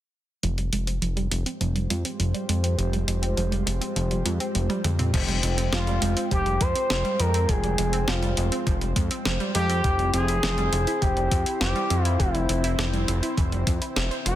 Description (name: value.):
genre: synthwave.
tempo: 102 BPM.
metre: 4/4.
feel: straight.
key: F minor.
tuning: A4 = 439 Hz.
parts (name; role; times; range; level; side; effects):
chorused pulse-width pad; sustained chords; 0.4-14.4 s; Ab3 to G5; -32 LUFS; equal; vintage 12-bit sampler grit, sidechain pumping.
analog pluck; arpeggios; 0.4-14.4 s; E3 to E5; -32 LUFS; right 4 dB; chorus, cassette tape, tape echo.
fat analog bass; bass; 0.4-14.4 s; F1 to F2; -25 LUFS; equal; tube saturation, sidechain pumping.
clean 12-bit digital drum machine; drums; 0.4-14.4 s; crash cymbal, hi-hat, snare drum, toms; -29 LUFS; equal; none.
electronic kick drum; drums; 5.1-13.8 s; none; -26 LUFS; equal; none.
expressive synth lead; melody; 5.7-14.4 s; E4 to C5; -27 LUFS; left 1 dB; chorus, ping-pong delay.
room: light reverb.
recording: dense, heavily limited modern master.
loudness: -22 LUFS.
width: side -13 dB against mid.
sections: 0.4-5.1 A section; 5.1-14.4 B section.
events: filter sweep on analog synth bass 0.4-5.1; filter sweep on analog synth pad 0.4-5.1; filter sweep on synth arpeggio sound 0.4-5.1; drum fill 4.7-5.1.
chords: 0.4 Fmadd9; 9.8 C/F.